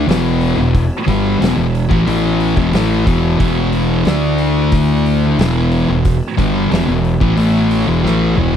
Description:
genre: stoner and doom metal.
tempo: 90 BPM.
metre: 4/4.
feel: straight.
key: E minor.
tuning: A4 = 444 Hz.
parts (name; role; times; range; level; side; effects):
tonewheel organ; sustained chords; 0.0-8.6 s; D3 to F#4; -28 LUFS; right 1 dB; none.
thick fuzz guitar; riff; 0.0-8.6 s; E2 to D4; -16 LUFS; left 10 dB; distortion.
thick fuzz guitar; riff; 0.0-8.6 s; E2 to D4; -17 LUFS; right 8 dB; distortion.
fuzz fingered electric bass; bass; 0.0-8.6 s; E1 to D2; -19 LUFS; equal; overdrive.
oversized low-tuned drum kit; drums; 0.1-8.5 s; hi-hat, kick drum, snare drum, toms; -19 LUFS; equal; none.
room: little or no reverb.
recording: dry, close 1970s-style studio recording.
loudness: -12 LUFS.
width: side -9 dB against mid.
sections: 0.0-8.6 A section.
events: drum fill 8.0-8.6.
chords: 0.1 Em; 4.1 D5; 5.4 Em.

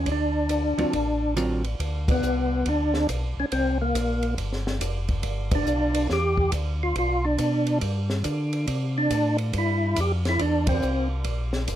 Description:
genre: soul jazz organ trio.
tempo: 139 BPM.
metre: 4/4.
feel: swing 65% on 8ths.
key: G mixolydian.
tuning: A4 = 444 Hz.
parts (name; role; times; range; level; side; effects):
percussive tonewheel organ; melody; 0.0-11.1 s; Bb3 to G4; -24 LUFS; equal; slow rotary speaker, overdrive, chorus vibrato.
mellow tonewheel organ; bass; 0.0-11.8 s; F1 to D3; -26 LUFS; equal; slow rotary speaker.
compact cocktail drum kit; drums; 0.1-11.8 s; hi-hat, kick drum, ride cymbal, snare drum; -30 LUFS; right 1 dB; none.
hollow-body jazz guitar; accompaniment; 0.8-1.6 s; D3 to E#4; -26 LUFS; right 3 dB; none.
room: light reverb.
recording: close, detailed microphones.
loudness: -22 LUFS.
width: side -11 dB against mid.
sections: 0.0-1.8 A section; 1.8-11.8 A section.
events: band accent 2.0, 5.5, 10.6.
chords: 0.1 D7#9; 1.8 Bm; 3.5 C5; 5.2 G; 8.7 C7.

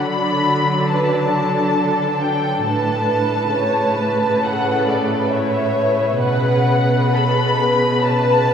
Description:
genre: cinematic.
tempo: 68 BPM.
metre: 4/4.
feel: rubato.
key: D major.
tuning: A4 = 440 Hz.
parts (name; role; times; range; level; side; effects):
muted studio violin section; melody; 0.0-8.5 s; D5 to B5; -21 LUFS; left 3 dB; none.
muted studio viola section; accompaniment; 0.0-8.5 s; C#3 to B4; -21 LUFS; right 2 dB; none.
muted studio cello section; bass; 0.0-8.5 s; A2 to D3; -21 LUFS; right 2 dB; none.
muted studio violin section; second line; 0.9-8.5 s; A4 to C#5; -22 LUFS; left 2 dB; none.
room: wet church reverb, RT60 3.8 s.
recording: recorded in a church or concert hall.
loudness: -15 LUFS.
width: side -8 dB against mid.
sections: 0.0-8.5 A section.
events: none.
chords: 0.0 D; 2.7 Aadd9; 6.2 Bsus2.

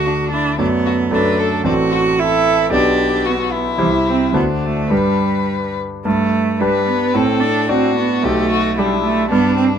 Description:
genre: quick classical-period movement for piano trio.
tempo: 112 BPM.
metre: 2/4.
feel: rubato.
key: G major.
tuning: A4 = 441 Hz.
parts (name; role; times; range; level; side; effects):
rich violin; melody; 0.0-9.8 s; D4 to B4; -21 LUFS; left 8 dB; none.
rich cello; second line; 0.0-9.6 s; E3 to F#4; -18 LUFS; right 5 dB; none.
clear concert grand piano; accompaniment; 0.0-9.8 s; A1 to D5; -18 LUFS; equal; none.
room: light reverb.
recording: close, detailed microphones.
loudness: -14 LUFS.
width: side -8 dB against mid.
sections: 0.0-6.1 A section; 6.1-9.8 B section.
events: none.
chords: 0.0 D; 0.6 D/F#; 1.7 D7/A; 2.7 G/B; 3.8 C; 4.3 D7; 4.9 G; 7.1 D/A; 8.2 G/B.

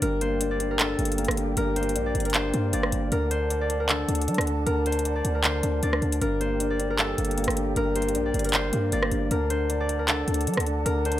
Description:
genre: hip hop, trap.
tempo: 155 BPM.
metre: 4/4.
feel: half-time.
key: G harmonic minor.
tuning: A4 = 439 Hz.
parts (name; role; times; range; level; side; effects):
concert harp; melody; 0.0-11.2 s; A4 to D5; -29 LUFS; left 1 dB; tape echo.
dark concert grand piano; accompaniment; 0.0-11.2 s; G2 to D5; -30 LUFS; left 2 dB; none.
breathy mellow large flute ensemble; sustained chords; 0.0-11.2 s; D4 to A5; -35 LUFS; right 2 dB; none.
hard-hitting 808-style bass; bass; 0.0-11.2 s; G1 to F#3; -28 LUFS; right 1 dB; none.
trap drum kit; drums; 0.0-11.2 s; handclaps, hi-hat, rim click; -27 LUFS; right 1 dB; none.
room: studio reverb.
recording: none.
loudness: -23 LUFS.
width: side -13 dB against mid.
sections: 0.0-11.2 A section.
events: none.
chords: 0.0 Gm; 3.1 D; 6.2 Gm; 9.3 D.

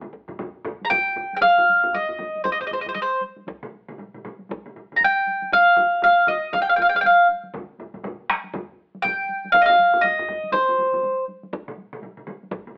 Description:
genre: japanese traditional, taiko drum ensemble.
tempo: 118 BPM.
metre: 4/4.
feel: swing 60% on 16ths.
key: F suspended pentatonic.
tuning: A4 = 440 Hz.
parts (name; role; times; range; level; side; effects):
taiko ensemble; percussion; 0.0-11.0 s; none; -32 LUFS; equal; none.
taiko ensemble; percussion; 0.0-12.8 s; none; -33 LUFS; equal; none.
taiko ensemble; percussion; 0.1-12.7 s; none; -34 LUFS; equal; none.
taiko ensemble; percussion; 0.3-12.7 s; none; -42 LUFS; equal; none.
mandolin; melody; 0.8-11.2 s; C5 to Bb5; -16 LUFS; equal; none.
room: moderate studio reverb, RT60 0.7 s.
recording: telephone sound.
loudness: -17 LUFS.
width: side -37 dB against mid.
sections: 0.0-1.4 A section; 1.4-12.8 B section.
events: speeding up 0.0-12.8.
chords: none.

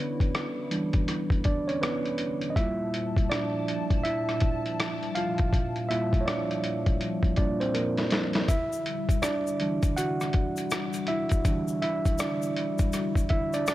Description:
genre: lo-fi hip hop.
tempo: 81 BPM.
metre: 4/4.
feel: swing 62% on 16ths.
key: unclear.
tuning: A4 = 438 Hz.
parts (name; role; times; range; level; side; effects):
tine electric piano; accompaniment; 0.0-13.7 s; E3 to F#5; -28 LUFS; right 2 dB; low-pass filter.
hollow soft pad; sustained chords; 0.0-13.7 s; Bb2 to A5; -35 LUFS; left 2 dB; ensemble chorus, low-pass filter.
lo-fi sampler-style drum kit; drums; 0.2-13.7 s; hi-hat, kick drum, rim click, snare drum; -28 LUFS; left 1 dB; none.
tube shaker; percussion; 8.5-13.7 s; none; -44 LUFS; left 8 dB; none.
room: light reverb.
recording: none.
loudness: -25 LUFS.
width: side -15 dB against mid.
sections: 0.0-13.7 A section.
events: tine electric piano solo 0.0-13.7; drum fill 7.7-8.5.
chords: 0.0 Em9; 2.6 Gm9; 8.5 Em9.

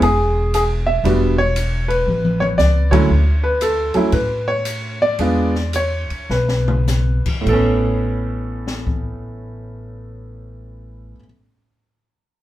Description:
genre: jazz piano trio.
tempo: 99-117 BPM.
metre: 4/4.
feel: swing 66% on 8ths.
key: A major.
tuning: A4 = 440 Hz.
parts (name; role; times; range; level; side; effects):
clear concert grand piano; melody; 0.0-11.2 s; D2 to E5; -19 LUFS; right 1 dB; none.
upright bass; bass; 0.0-11.1 s; E1 to A2; -20 LUFS; equal; none.
open jazz drum kit; drums; 0.0-9.1 s; crash cymbal, hi-hat, kick drum, ride cymbal, snare drum, toms; -25 LUFS; left 2 dB; none.
room: wet club reverb, RT60 0.6 s.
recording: heard from further back in the room.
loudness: -15 LUFS.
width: side -14 dB against mid.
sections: 0.0-3.1 A section; 3.1-7.5 B section; 7.5-12.3 C section.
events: drum fill 2.1-2.6, 6.3-6.9; band accent 2.8; slowing down 3.1-7.5.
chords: 0.0 Amaj7(no3) (rootless); 2.1 Aadd9; 3.1 Dmaj7(no3); 5.2 E7(no3); 7.5 Aadd9.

